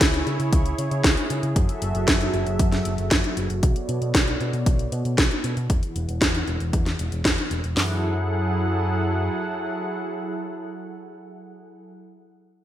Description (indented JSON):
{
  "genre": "italo disco",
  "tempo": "116 BPM",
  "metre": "4/4",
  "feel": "straight",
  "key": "F# minor",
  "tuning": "A4 = 440 Hz",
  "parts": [
    { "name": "warm analog pad", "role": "sustained chords", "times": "0.0-11.9 s", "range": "E3 to F#5", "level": "-28 LUFS", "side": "right 1 dB", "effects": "lush chorus" },
    { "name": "picked electric bass with an envelope filter", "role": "bass", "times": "0.0-9.3 s", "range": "E1 to C#3", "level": "-26 LUFS", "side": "equal", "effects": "none" },
    { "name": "house drum kit", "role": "drums", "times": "0.0-7.9 s", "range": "hi-hat, kick drum, snare drum", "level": "-22 LUFS", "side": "equal", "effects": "overdrive, studio ambience" },
    { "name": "house drum kit", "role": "drums", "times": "0.0-7.7 s", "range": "hi-hat, snare drum", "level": "-24 LUFS", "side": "equal", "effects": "overdrive, studio ambience, gated reverb" }
  ],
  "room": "light reverb, digital ambience",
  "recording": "bright 1980s-style digital production",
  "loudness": "-21 LUFS",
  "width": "side -12 dB against mid",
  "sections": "0.0-7.8 A section; 7.8-11.9 B section",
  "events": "filter sweep on analog synth pad 0.0-7.8",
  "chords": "0.0 C#m; 1.6 F#m7; 3.6 Bm7; 5.7 Eadd9; 7.8 F#m7",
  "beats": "0.01 0.53 1.04 | 1.56 2.08 2.59 3.11 | 3.63 4.15 4.66 5.18 | 5.70 6.21 6.73 7.25 | 7.77 8.28 8.80 9.32 | 9.84 10.35 10.87 11.39"
}